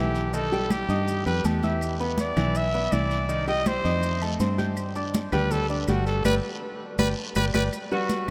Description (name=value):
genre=latin, salsa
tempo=162 BPM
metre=4/4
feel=straight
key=G major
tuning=A4 = 436 Hz
part: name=growling trumpet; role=melody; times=0.0-7.6 s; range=D4 to E5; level=-31 LUFS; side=equal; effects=none
part: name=bright upright piano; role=accompaniment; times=0.0-8.3 s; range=D#3 to G6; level=-31 LUFS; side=equal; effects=none
part: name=fingered electric bass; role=bass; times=0.0-7.7 s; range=G1 to G2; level=-30 LUFS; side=equal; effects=none
part: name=guiro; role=percussion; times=0.1-8.3 s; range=none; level=-44 LUFS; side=equal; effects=none
part: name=maracas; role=percussion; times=0.2-8.3 s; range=none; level=-46 LUFS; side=equal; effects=none
part: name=congas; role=percussion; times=0.3-8.3 s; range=none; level=-33 LUFS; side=equal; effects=none
part: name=claves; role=percussion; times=0.7-8.3 s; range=none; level=-45 LUFS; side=equal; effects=none
part: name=bright horn section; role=melody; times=7.9-8.3 s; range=F#4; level=-31 LUFS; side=equal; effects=none
room=wet cathedral reverb, RT60 6.9 s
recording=in a vast, echoing space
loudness=-25 LUFS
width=mono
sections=0.0-7.7 A section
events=trumpet solo 0.0-7.7; band accent 6.2-7.7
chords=0.3 Baug7; 1.8 E5; 3.3 Cm; 4.0 F9; 4.8 G; 7.7 Gmaj7